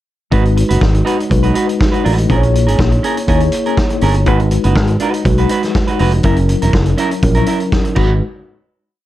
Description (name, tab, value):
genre	disco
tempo	122 BPM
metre	4/4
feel	straight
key	G# minor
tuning	A4 = 440 Hz
part	mellow tine electric piano	accompaniment	0.3-8.2 s	F#3 to C#5	-18 LUFS	left 2 dB	medium stereo tremolo
part	semi-hollow electric guitar	accompaniment	0.3-8.1 s	C#4 to B4	-20 LUFS	right 4 dB	none
part	fingered electric bass	bass	0.3-8.2 s	E1 to D#2	-14 LUFS	equal	none
part	vintage drum kit	drums	0.3-8.1 s	crash cymbal, hi-hat, kick drum, snare drum	-17 LUFS	equal	none
room	light reverb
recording	dark, warm production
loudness	-11 LUFS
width	side -14 dB against mid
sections	0.3-8.2 verse; 8.2-9.1 final hit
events	none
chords	0.3 G#m7; 2.3 A#m7b5; 4.3 G#m7; 6.2 F#7; 8.0 G#m7; 8.2 N.C.